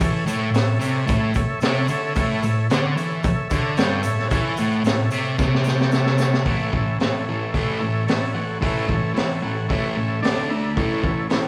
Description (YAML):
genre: garage rock duo or trio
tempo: 112 BPM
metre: 4/4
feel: straight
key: A mixolydian, A major from 6.5 s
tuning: A4 = 440 Hz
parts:
  - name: combo organ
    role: sustained chords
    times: 0.0-11.5 s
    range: D4 to B5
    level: -29 LUFS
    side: equal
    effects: none
  - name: fuzz guitar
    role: riff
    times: 0.0-11.5 s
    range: G2 to D4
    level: -24 LUFS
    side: equal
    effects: distortion
  - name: crunchy breakbeat drum kit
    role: drums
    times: 0.0-11.4 s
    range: hi-hat, kick drum, snare drum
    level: -26 LUFS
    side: equal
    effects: vintage 12-bit sampler grit
  - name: egg shaker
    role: percussion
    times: 0.0-6.4 s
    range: none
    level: -46 LUFS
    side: equal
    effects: none
room: moderate large studio reverb, RT60 1.2 s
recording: band playing live in one room, cassette tape, faint mains hum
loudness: -21 LUFS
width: mono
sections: 0.0-6.5 A section; 6.5-11.5 B section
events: drum fill 5.4-6.5; transistor combo organ fill 9.7-10.8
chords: 0.0 A; 10.2 D5; 10.8 A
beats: | 0.00 0.54 1.08 1.62 | 2.16 2.70 3.24 3.78 | 4.32 4.85 5.39 5.93 | 6.47 7.00 7.54 8.08 | 8.62 9.16 9.70 10.23 | 10.77 11.31